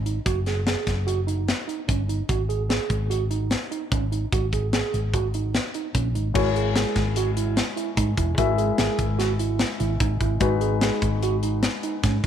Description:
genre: progressive instrumental, band music in an uneven meter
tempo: 148 BPM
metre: 5/4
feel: straight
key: unclear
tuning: A4 = 444 Hz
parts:
  - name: hollow-body short-scale fingered electric bass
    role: bass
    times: 0.0-12.3 s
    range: E1 to G#2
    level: -25 LUFS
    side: equal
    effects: none
  - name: tine electric piano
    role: arpeggios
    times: 0.1-12.2 s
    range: C#4 to G#4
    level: -28 LUFS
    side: right 10 dB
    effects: medium stereo tremolo
  - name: tight metal drum kit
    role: drums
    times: 0.1-12.3 s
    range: crash cymbal, hi-hat, kick drum, snare drum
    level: -26 LUFS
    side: left 1 dB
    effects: none
  - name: dark concert grand piano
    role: accompaniment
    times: 6.3-12.3 s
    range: G#3 to E5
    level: -27 LUFS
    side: left 10 dB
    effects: none
room: light reverb, studio reverb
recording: 1960s-style stereo with parts hard left and right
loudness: -21 LUFS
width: side -9 dB against mid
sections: 0.0-6.4 A section; 6.4-12.3 B section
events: none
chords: 0.3 F#5; 2.3 G#5; 6.4 F#7; 10.4 G#m7

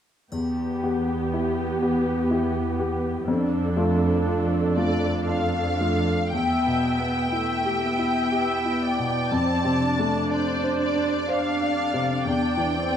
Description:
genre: cinematic, emotional film score for orchestra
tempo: 60 BPM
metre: 3/4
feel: rubato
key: unclear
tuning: A4 = 440 Hz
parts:
  - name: clear grand piano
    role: accompaniment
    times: 0.3-13.0 s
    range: E2 to C5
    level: -25 LUFS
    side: left 1 dB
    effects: none
  - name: rich symphonic viola section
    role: accompaniment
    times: 0.3-13.0 s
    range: A3 to E5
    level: -27 LUFS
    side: right 2 dB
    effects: none
  - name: warm symphonic cello section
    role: bass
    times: 0.3-6.1 s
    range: E2 to F2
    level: -27 LUFS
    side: right 2 dB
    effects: none
  - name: triangle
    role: percussion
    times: 0.3-2.3 s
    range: none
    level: -49 LUFS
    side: left 1 dB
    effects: none
  - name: warm symphonic violin section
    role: melody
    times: 4.8-13.0 s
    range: D5 to A5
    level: -27 LUFS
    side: left 2 dB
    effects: none
room: moderate recital hall reverb, RT60 1.3 s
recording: dark, warm production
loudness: -21 LUFS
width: side -9 dB against mid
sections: 0.3-6.3 A section; 6.3-13.0 B section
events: none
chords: 0.3 Em; 3.3 F6; 6.3 Em; 9.3 F6; 12.3 Cadd9/E

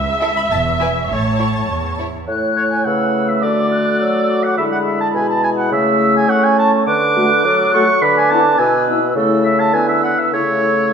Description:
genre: quick classical-period movement for symphony orchestra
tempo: 104 BPM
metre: 2/4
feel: straight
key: A major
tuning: A4 = 440 Hz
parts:
  - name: rich studio viola section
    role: accompaniment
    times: 0.0-2.0 s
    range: C#5 to E5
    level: -19 LUFS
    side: right 1 dB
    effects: none
  - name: clear studio double bass section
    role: bass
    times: 0.0-1.6 s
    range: E1 to C#2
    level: -26 LUFS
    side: right 3 dB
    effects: none
  - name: warm studio cello section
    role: bass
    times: 0.0-2.2 s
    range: C#2 to A2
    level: -23 LUFS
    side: right 2 dB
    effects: none
  - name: rich studio violin section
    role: melody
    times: 0.2-2.0 s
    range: E5 to B5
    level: -27 LUFS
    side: left 5 dB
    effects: none
  - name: bright studio violin section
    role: second line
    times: 0.2-2.1 s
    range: E4 to C#5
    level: -29 LUFS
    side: equal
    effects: none
  - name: hollow flute section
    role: second line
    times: 2.3-10.9 s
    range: B5 to F#6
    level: -21 LUFS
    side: right 1 dB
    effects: none
  - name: warm clarinet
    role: second line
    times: 2.3-10.9 s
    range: G#4 to C#5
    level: -23 LUFS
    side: left 1 dB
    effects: none
  - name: mellow bassoon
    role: accompaniment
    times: 2.3-10.9 s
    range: A2 to C#4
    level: -19 LUFS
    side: right 2 dB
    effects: none
  - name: mellow French horn section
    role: sustained chords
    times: 2.3-10.9 s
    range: G#3 to F#4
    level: -20 LUFS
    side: left 3 dB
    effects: none
  - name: warm oboe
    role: second line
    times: 2.6-10.9 s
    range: C#5 to D6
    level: -17 LUFS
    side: right 1 dB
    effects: none
room: wet scoring stage reverb, RT60 1.6 s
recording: minimal, uncompressed stereo recording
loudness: -13 LUFS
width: side -7 dB against mid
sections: 0.0-2.3 A section; 2.3-10.9 B section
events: none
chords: 0.0 A/C# (rootless); 0.5 N.C.; 1.1 A; 3.4 D; 4.6 E7/D; 5.7 A/C#; 6.9 D; 8.0 E5/D; 9.2 A/C#; 9.7 E5/D; 10.3 A/C#

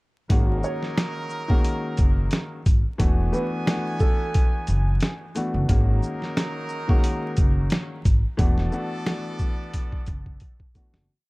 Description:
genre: hip hop, boom-bap hip-hop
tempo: 89 BPM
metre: 4/4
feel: swing 55% on 16ths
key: unclear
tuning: A4 = 440 Hz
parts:
  - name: dark grand piano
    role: accompaniment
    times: 0.3-11.1 s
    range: D#3 to F#4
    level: -29 LUFS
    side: left 1 dB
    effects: cassette tape
  - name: bright trumpet section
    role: stabs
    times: 0.3-10.7 s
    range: F#3 to G#5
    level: -35 LUFS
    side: right 1 dB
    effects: analog delay
  - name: upright bass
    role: bass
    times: 0.3-11.1 s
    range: E1 to G#1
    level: -23 LUFS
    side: equal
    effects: none
  - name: boom bap sampler-style drum kit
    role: drums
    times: 0.3-11.1 s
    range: hi-hat, kick drum, shaker, snare drum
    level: -21 LUFS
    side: equal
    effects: vintage 12-bit sampler grit
  - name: dark upright piano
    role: melody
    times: 0.6-4.5 s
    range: A4 to C#5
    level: -32 LUFS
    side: right 3 dB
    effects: none
room: small room ambience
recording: dark, warm production, vinyl crackle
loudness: -21 LUFS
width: side -23 dB against mid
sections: 0.3-11.1 hook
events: fade-out 8.4-11.1; drum fill 9.7-11.1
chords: 0.3 G#9sus4; 3.0 E9sus4; 5.7 G#9sus4; 8.4 E9sus4

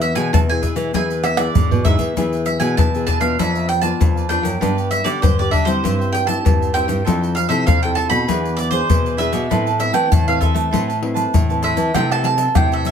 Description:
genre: samba and choro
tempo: 98 BPM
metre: 4/4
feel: straight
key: unclear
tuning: A4 = 436 Hz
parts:
  - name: mandolin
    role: melody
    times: 0.0-12.9 s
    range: C5 to B5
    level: -21 LUFS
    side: right 4 dB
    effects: none
  - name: cavaquinho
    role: accompaniment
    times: 0.0-12.9 s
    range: D4 to A5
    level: -27 LUFS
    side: right 4 dB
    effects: none
  - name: nylon-string guitar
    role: accompaniment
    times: 0.0-12.9 s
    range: G2 to B4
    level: -24 LUFS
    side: left 5 dB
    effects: none
  - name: nylon-string guitar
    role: bass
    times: 0.0-12.9 s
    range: E2 to A3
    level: -22 LUFS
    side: right 1 dB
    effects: none
  - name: egg shaker, pandeiro, surdo and tamborim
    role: percussion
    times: 0.0-12.9 s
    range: none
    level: -18 LUFS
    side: left 2 dB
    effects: none
room: light reverb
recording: close, detailed microphones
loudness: -15 LUFS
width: side -8 dB against mid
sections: 0.0-11.9 A section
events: drum fill 1.3-2.2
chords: 0.0 E; 3.4 Bdim/F; 4.6 G; 5.8 C/G; 7.1 Fmaj7; 8.3 E7; 9.5 Amadd9; 11.9 C6

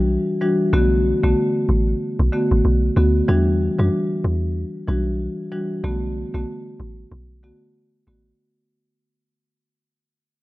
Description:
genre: afrobeats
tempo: 94 BPM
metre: 4/4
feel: swing 58% on 16ths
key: B minor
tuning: A4 = 440 Hz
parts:
  - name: deep log drum bass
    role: bass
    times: 0.0-8.3 s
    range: A1 to F#2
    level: -19 LUFS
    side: equal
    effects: none
  - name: marimba with soft mallets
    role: accompaniment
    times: 0.4-8.3 s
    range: D3 to F#4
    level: -21 LUFS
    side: equal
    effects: none
room: light reverb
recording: none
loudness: -18 LUFS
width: side -18 dB against mid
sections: 0.0-3.3 A section; 3.3-8.4 B section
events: fade-out 3.3-8.4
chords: 0.0 Em9; 0.7 Bm7; 3.3 Em9; 5.8 Bm7

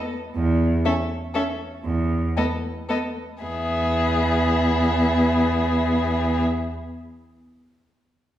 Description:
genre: quick classical-period movement for string quartet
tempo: 110-123 BPM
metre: 3/4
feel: straight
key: E major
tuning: A4 = 441 Hz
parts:
  - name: clear cello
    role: bass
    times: 0.4-6.4 s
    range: E2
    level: -24 LUFS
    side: right 1 dB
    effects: none
  - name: warm violin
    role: melody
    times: 0.9-6.4 s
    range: D#5 to E5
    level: -28 LUFS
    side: left 3 dB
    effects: none
  - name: rich violin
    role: second line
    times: 0.9-6.4 s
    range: G#4 to A4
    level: -28 LUFS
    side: left 2 dB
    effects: none
  - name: warm viola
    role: accompaniment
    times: 0.9-6.4 s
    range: B3 to C#4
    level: -24 LUFS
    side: equal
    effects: none
room: wet recital hall reverb, RT60 1.5 s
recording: heard from further back in the room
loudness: -20 LUFS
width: side -12 dB against mid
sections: 0.0-3.4 A section; 3.4-6.6 B section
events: slowing down 0.0-3.4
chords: 0.4 A/E (rootless); 1.9 N.C.

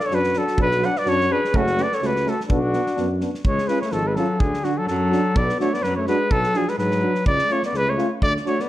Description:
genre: balkan folk, Balkan brass band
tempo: 126 BPM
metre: 2/4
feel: swing 56% on 16ths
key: B dorian sharp4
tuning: A4 = 436 Hz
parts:
  - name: mellow trumpet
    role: melody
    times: 0.0-8.7 s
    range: F#4 to F#5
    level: -22 LUFS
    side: equal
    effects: none
  - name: mellow alto saxophone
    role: second line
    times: 0.0-8.7 s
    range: D3 to D5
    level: -27 LUFS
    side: left 3 dB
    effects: none
  - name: loose indie drum kit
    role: percussion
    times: 0.0-8.6 s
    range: kick drum, snare drum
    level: -26 LUFS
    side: equal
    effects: none
  - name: clear euphonium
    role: accompaniment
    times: 0.1-8.6 s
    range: C#4 to F#4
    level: -29 LUFS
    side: left 4 dB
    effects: none
  - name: warm euphonium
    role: accompaniment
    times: 0.1-8.5 s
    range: F#3 to D4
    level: -29 LUFS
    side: right 6 dB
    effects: none
  - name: mellow tuba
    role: bass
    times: 0.1-8.3 s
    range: F#1 to G#2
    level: -27 LUFS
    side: equal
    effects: none
room: moderate recital hall reverb, RT60 1.4 s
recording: dark, warm production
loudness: -18 LUFS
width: side -14 dB against mid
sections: 0.0-3.4 A section; 3.4-8.7 B section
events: none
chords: 0.0 Bm; 1.5 F#m; 2.5 Bm; 3.4 C#; 4.4 D; 5.4 Bm; 7.3 C#

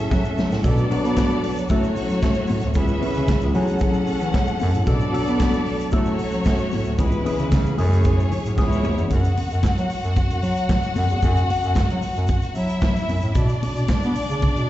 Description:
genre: disco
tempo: 113 BPM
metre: 4/4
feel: straight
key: F# minor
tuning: A4 = 438 Hz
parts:
  - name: clear studio string section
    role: second line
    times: 0.0-14.7 s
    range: G#3 to F#5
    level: -27 LUFS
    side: equal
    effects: slapback echo
  - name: tine electric piano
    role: accompaniment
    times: 0.0-9.1 s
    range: E3 to F#5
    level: -25 LUFS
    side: left 1 dB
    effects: phaser, slapback echo
  - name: mellow bass clarinet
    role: bass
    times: 0.0-14.7 s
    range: C#2 to B3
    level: -22 LUFS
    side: equal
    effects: none
  - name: vintage drum kit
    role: drums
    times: 0.0-14.7 s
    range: handclaps, hi-hat, kick drum, snare drum, splash cymbal, toms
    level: -23 LUFS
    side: equal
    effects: none
  - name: congas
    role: percussion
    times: 0.1-14.6 s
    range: none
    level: -31 LUFS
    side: left 4 dB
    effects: slapback echo
  - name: egg shaker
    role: percussion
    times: 0.1-14.7 s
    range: none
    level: -52 LUFS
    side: right 3 dB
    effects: none
room: little or no reverb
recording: live gig heard through the venue's PA, recital hall reverb, nothing above 7.9 kHz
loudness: -18 LUFS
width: side -14 dB against mid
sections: 0.0-9.1 A section; 9.1-14.7 B section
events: tine electric piano fill 0.0-0.6; drum fill 0.1-0.6, 8.6-9.1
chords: 0.0 F#m9; 0.6 Bm7; 1.7 A6; 2.8 C#m7; 3.5 F#m9; 4.9 Bm7; 5.9 A6; 7.0 C#m7; 7.8 F#m9; 8.6 C#m7; 9.1 F#7(no3); 13.4 Bm

